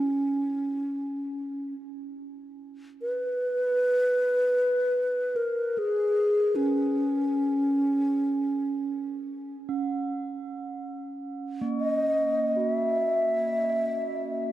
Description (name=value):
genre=world meditative, free-time meditation music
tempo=free time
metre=none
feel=none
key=unclear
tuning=A4 = 440 Hz
part: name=mellow hollow alto flute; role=melody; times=0.0-14.5 s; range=C#4 to E5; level=-25 LUFS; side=equal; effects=diffuse ambient delay
part: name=bronze singing bowl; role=texture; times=0.0-1.6, 9.7-14.5 s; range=A#3 to F#4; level=-31 LUFS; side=right 4 dB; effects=none
room=wet cathedral reverb, RT60 6.8 s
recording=dark, warm production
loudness=-24 LUFS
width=side -14 dB against mid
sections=0.0-10.8 A section; 10.8-14.5 A section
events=none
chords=none